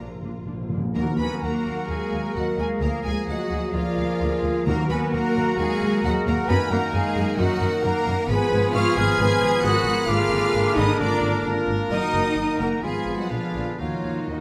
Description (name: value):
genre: classical, dramatic, fast romantic movement for symphony orchestra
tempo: 131 BPM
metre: 4/4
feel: uneven beats, rubato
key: Eb minor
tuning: A4 = 438 Hz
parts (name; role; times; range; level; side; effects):
- clear symphonic violin section; melody; 0.0-14.4 s; Eb5 to Ab6; -36 LUFS; equal; none
- clear studio violin section; second line; 0.0-14.4 s; Eb4 to Ab5; -37 LUFS; equal; none
- rich symphonic viola section; accompaniment; 0.0-14.4 s; Bb3 to Ab5; -35 LUFS; equal; none
- clear symphonic double bass section; bass; 0.0-14.4 s; Gb1 to Gb2; -30 LUFS; equal; none
- rich symphonic cello section; bass; 0.0-14.4 s; Eb3 to Ab4; -31 LUFS; equal; none
- timpani; percussion; 0.0-1.6, 4.7-5.3, 13.8-14.4 s; Bb2 to Eb3; -31 LUFS; equal; none
- clear oboe; second line; 0.9-14.4 s; Bb5 to Cb6; -38 LUFS; equal; none
- mellow flute section; second line; 0.9-14.4 s; Bb4 to F6; -34 LUFS; equal; none
- mellow trombone section; sustained chords; 0.9-14.4 s; D3 to Cb4; -33 LUFS; equal; none
- bright clarinet; second line; 1.0-14.4 s; D4 to Ab4; -37 LUFS; equal; none
- mellow trumpet section; stabs; 1.0-14.4 s; Gb4 to Bb4; -33 LUFS; equal; none
- mellow French horn section; sustained chords; 1.9-14.4 s; Eb4 to Cb5; -31 LUFS; equal; none
room: moderate recital hall reverb, RT60 1.3 s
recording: none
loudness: -23 LUFS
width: mono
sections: 1.0-14.4 A section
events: timpani fill 0.0-1.0, 13.8-14.4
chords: 0.0 Bb; 1.0 Ebm; 2.8 Bb7/D; 4.7 Ebm; 6.5 Ebm/Gb; 8.3 Fdim/Ab; 10.1 Bb7/Ab; 11.9 Ebm/Gb; 12.8 Fdim; 13.3 Bb7b9; 13.8 Ebm